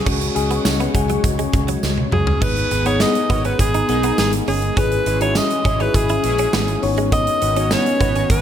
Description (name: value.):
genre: 1980s-style pop.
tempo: 102 BPM.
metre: 4/4.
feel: straight.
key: G# minor.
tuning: A4 = 440 Hz.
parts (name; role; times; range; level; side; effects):
edgy alto saxophone; melody; 0.0-8.4 s; G#4 to D#5; -21 LUFS; right 1 dB; tape echo.
bell-like tine electric piano; accompaniment; 0.0-8.4 s; G#3 to C#5; -22 LUFS; left 6 dB; phaser.
phased analog pad; sustained chords; 0.0-8.4 s; D#3 to C#6; -30 LUFS; right 1 dB; phaser, chorus.
direct-recorded clean electric guitar; riff; 0.1-8.3 s; F#3 to E4; -28 LUFS; right 6 dB; analog chorus, tape echo.
fretless electric bass; bass; 0.1-8.4 s; G1 to C#2; -22 LUFS; right 1 dB; wide subtle chorus.
big rock drum kit; drums; 0.1-8.4 s; crash cymbal, hi-hat, kick drum, snare drum, tambourine, toms; -21 LUFS; right 1 dB; gated reverb.
tambourine; percussion; 0.7-7.8 s; none; -33 LUFS; right 8 dB; none.
analog synth brass; stabs; 2.7-8.4 s; B3 to D#5; -29 LUFS; right 2 dB; chorus.
room: light reverb, small room ambience.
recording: none.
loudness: -16 LUFS.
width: side -9 dB against mid.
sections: 0.1-2.4 A section; 2.4-8.4 B section.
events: drum fill 1.8-2.4.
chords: 0.1 C#sus4; 2.4 G#m; 4.8 C#m/G#; 6.8 Badd9/G#.